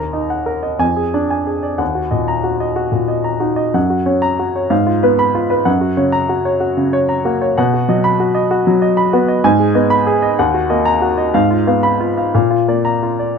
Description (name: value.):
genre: classical, romantic character piece for solo piano.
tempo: 56-65 BPM (dotted quarters).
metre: 6/8.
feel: rubato.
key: Eb minor.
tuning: A4 = 438 Hz.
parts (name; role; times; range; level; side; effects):
clear grand piano; solo; 0.0-13.4 s; Eb2 to Cb6; -13 LUFS; equal; none.
room: light reverb.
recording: close, detailed microphones.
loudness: -13 LUFS.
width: side -6 dB against mid.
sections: 0.0-13.4 A section.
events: none.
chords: 0.0 Ebm; 0.8 Ddim/F; 1.8 Ebm; 3.8 Gb; 4.7 Fdim/Ab; 5.7 Gb; 7.6 B; 9.4 Abm; 10.4 Ebm; 11.3 Fdim/Ab; 12.3 Bb.